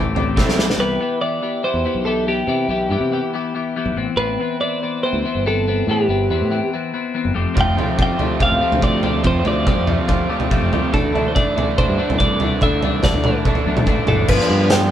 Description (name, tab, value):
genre	indie rock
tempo	142 BPM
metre	4/4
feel	straight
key	unclear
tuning	A4 = 438 Hz
part	twelve-string electric guitar	riff	0.0-14.9 s	E3 to G4	-23 LUFS	left 5 dB	phaser
part	growling fingered electric bass	bass	0.0-14.9 s	F1 to D3	-22 LUFS	equal	overdrive
part	loose indie drum kit	drums	0.2-0.8, 7.6-14.8 s	crash cymbal, hi-hat, kick drum, snare drum, toms	-19 LUFS	equal	none
part	crunchy overdriven guitar	riff	0.4-0.7, 7.5-14.9 s	F2 to F4	-23 LUFS	right 5 dB	none
part	twelve-string electric guitar	melody	0.8-14.9 s	G4 to G5	-22 LUFS	right 1 dB	none
room	moderate studio reverb, RT60 0.9 s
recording	band playing live in one room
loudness	-16 LUFS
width	side -10 dB against mid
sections	0.8-14.3 A section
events	drum fill 0.4-0.8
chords	0.0 Am7; 0.8 Cmaj7; 4.0 Amadd9; 7.4 Fadd9; 10.9 Dsus2; 14.3 G7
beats	0.37 | 0.80 1.22 1.64 2.06 | 2.49 2.91 3.33 3.76 | 4.18 4.61 5.03 5.45 | 5.87 6.30 6.72 7.14 | 7.56 7.99 8.41 8.83 | 9.25 9.67 10.09 10.51 | 10.93 11.36 11.78 12.20 | 12.61 13.03 13.45 13.87 | 14.29 14.71